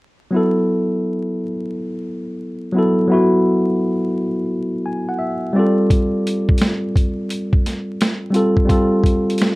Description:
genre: lo-fi hip hop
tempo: 86 BPM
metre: 4/4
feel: swing 65% on 16ths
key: unclear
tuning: A4 = 440 Hz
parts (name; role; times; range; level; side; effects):
- mellow tine electric piano; accompaniment; 0.3-9.6 s; F#3 to G#5; -17 LUFS; equal; low-pass filter, plate reverb
- boom bap sampler-style drum kit; drums; 5.9-9.6 s; hi-hat, kick drum, snare drum; -17 LUFS; equal; none
room: wet small room reverb, RT60 0.6 s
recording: vinyl crackle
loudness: -16 LUFS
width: side -22 dB against mid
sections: 0.3-9.6 A section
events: tine electric piano fill 4.5-5.9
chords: 0.3 B5; 5.6 Gsus2

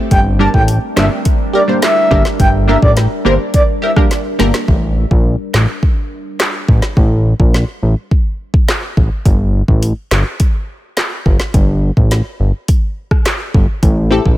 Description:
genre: dancehall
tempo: 105 BPM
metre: 4/4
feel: straight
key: unclear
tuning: A4 = 440 Hz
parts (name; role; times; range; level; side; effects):
- deep dark ambient pad; sustained chords; 0.0-4.6, 13.8-14.4 s; G3 to Bb4; -23 LUFS; right 1 dB; chorus, built-in reverb, sidechain pumping
- breathy flute-like synth lead; melody; 0.1-3.9 s; C5 to A5; -16 LUFS; equal; chorus, tape echo
- fat analog bass; bass; 0.1-14.4 s; G1 to Bb1; -13 LUFS; equal; none
- afro-pop drum kit; drums; 0.1-14.4 s; handclaps, hi-hat, kick drum, rim click, snare drum; -13 LUFS; equal; none
- punchy chord stab; accompaniment; 0.4-4.5, 14.1-14.2 s; G3 to C5; -17 LUFS; equal; chorus
room: digital ambience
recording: none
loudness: -11 LUFS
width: side -14 dB against mid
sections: 0.0-4.7 A section; 4.7-14.4 B section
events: drum fill 4.1-4.7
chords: 0.1 Gm; 4.7 N.C.; 9.3 Gsus2; 13.8 Am7

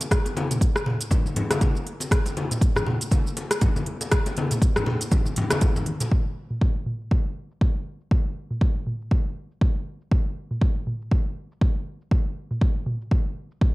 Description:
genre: house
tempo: 120 BPM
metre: 4/4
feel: swing 57% on 16ths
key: none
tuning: none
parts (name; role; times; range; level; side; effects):
- afro-pop drum kit; drums; 0.0-13.7 s; hi-hat, rim click, shaker, toms; -27 LUFS; equal; low-pass filter on hats, studio reverb, low-pass filter on perc, low-pass filter on snare, low-pass filter on toms
- congas; percussion; 0.0-6.1 s; none; -28 LUFS; left 2 dB; none
- electronic kick drum; drums; 0.1-13.7 s; none; -21 LUFS; equal; overdrive, studio reverb
room: light reverb, digital ambience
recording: dry, gritty hardware recording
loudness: -22 LUFS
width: side -20 dB against mid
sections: 0.0-6.1 A section; 6.1-13.7 B section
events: drum fill 5.7-6.1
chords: none

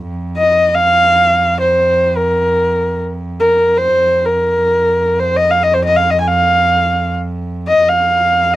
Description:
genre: mongolian traditional, Mongolian folk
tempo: free time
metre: none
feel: none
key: unclear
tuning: A4 = 441 Hz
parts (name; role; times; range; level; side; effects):
- clear cello; drone; 0.0-8.6 s; F2; -21 LUFS; right 1 dB; none
- clear horsehead fiddle; melody; 0.4-8.6 s; Bb4 to Ab5; -11 LUFS; equal; none
room: light reverb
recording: dry, close 1970s-style studio recording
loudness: -11 LUFS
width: side -15 dB against mid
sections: 0.1-8.6 A section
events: none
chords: none

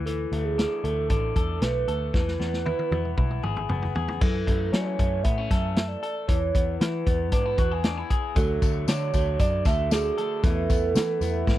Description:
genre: jangly indie pop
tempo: 116 BPM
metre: 4/4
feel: straight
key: unclear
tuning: A4 = 443 Hz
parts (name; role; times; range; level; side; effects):
- electric guitar through a small old amp; arpeggios; 0.0-11.6 s; E3 to A4; -32 LUFS; left 6 dB; slapback echo
- vintage muted picked electric bass; bass; 0.0-11.6 s; F#1 to F#3; -28 LUFS; equal; none
- hollow clarinet-like synth lead; melody; 0.1-11.6 s; G#4 to E5; -28 LUFS; right 4 dB; chorus, slapback echo
- vintage drum kit; drums; 0.1-11.6 s; crash cymbal, hi-hat, kick drum, snare drum, toms; -25 LUFS; equal; none
- fingerpicked steel-string acoustic guitar; accompaniment; 8.4-11.6 s; E2 to F#4; -32 LUFS; right 3 dB; none
- tambourine; percussion; 8.4-11.6 s; none; -42 LUFS; left 14 dB; none
room: little or no reverb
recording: dry, close 1970s-style studio recording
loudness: -22 LUFS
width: side -14 dB against mid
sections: 0.0-4.2 A section; 4.2-11.6 B section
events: drum fill 2.1-4.2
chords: 0.0 Dsus2; 2.1 E; 4.2 F#m7; 6.3 E; 8.4 D; 10.4 Esus4

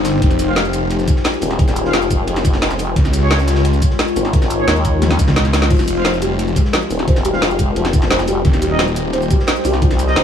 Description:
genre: dark technical drum and bass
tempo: 175 BPM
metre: 4/4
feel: straight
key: F minor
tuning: A4 = 440 Hz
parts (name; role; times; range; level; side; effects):
- deep dark ambient pad; sustained chords; 0.0-10.2 s; Ab3 to Db5; -22 LUFS; left 2 dB; chorus, built-in reverb, vintage 12-bit sampler grit, sidechain pumping
- snarling distorted saw bass; bass; 0.0-10.2 s; Eb1 to Db2; -17 LUFS; equal; distortion, overdrive
- crunchy breakbeat drum kit; drums; 0.0-10.2 s; ride cymbal, snare drum; -30 LUFS; left 1 dB; none
- drum and bass drum kit; drums; 0.0-10.2 s; crash cymbal, hi-hat, shaker, snare drum, toms; -20 LUFS; equal; overdrive, small room ambience
- electronic kick drum; drums; 0.2-9.9 s; none; -15 LUFS; equal; overdrive, small room ambience
- warm brass ensemble; stabs; 0.5-10.2 s; Db4 to F5; -24 LUFS; right 1 dB; digital delay
- formant-sweep wobble bass; bass; 1.4-10.1 s; Eb1 to Eb2; -19 LUFS; equal; chorus, tube saturation
- felt-muted upright piano; arpeggios; 5.7-10.2 s; F3 to C4; -22 LUFS; left 2 dB; sidechain pumping, digital delay
room: light reverb, small room ambience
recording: none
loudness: -13 LUFS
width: side -8 dB against mid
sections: 0.0-10.2 A section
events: drum fill 5.0-5.7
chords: 0.2 Fmadd9; 3.0 Db; 5.7 Fmadd9; 8.4 Eb6

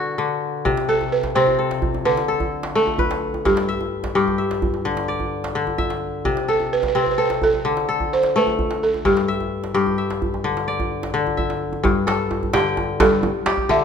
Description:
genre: west african traditional, West African string and xylophone music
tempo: 86 BPM (dotted quarters)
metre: 12/8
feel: straight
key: G major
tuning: A4 = 439 Hz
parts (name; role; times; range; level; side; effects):
- balafon; melody; 0.0-13.8 s; F#4 to E5; -21 LUFS; right 5 dB; none
- kora; arpeggios; 0.0-13.8 s; G2 to G5; -21 LUFS; left 4 dB; none
- djembe; percussion; 0.7-13.8 s; none; -26 LUFS; right 2 dB; none
room: moderate recital hall reverb, RT60 1.7 s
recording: minimal, uncompressed stereo recording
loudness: -18 LUFS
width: side -7 dB against mid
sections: 0.7-11.8 A section; 11.8-13.8 B section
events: balafon solo 11.8-13.8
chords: 0.0 D; 0.7 Am/C; 2.1 D5; 3.5 G; 6.3 C; 7.7 D5; 9.1 G5; 13.2 D5

